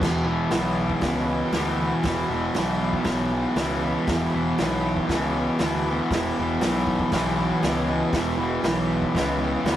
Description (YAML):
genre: garage rock duo or trio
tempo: 118 BPM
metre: 4/4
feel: straight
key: unclear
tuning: A4 = 440 Hz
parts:
  - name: fuzz guitar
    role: riff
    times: 0.0-9.8 s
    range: E2 to E3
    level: -23 LUFS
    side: equal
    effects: distortion
  - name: fuzz picked electric bass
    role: bass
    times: 0.0-9.8 s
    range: E1 to D2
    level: -28 LUFS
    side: equal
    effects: overdrive, tube saturation
  - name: vintage drum kit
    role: drums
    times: 0.0-9.8 s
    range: crash cymbal, hi-hat, kick drum, snare drum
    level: -28 LUFS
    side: right 1 dB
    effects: none
room: light reverb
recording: rough rehearsal-room recording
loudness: -21 LUFS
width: side -12 dB against mid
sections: 0.0-9.8 A section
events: none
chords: 0.0 E5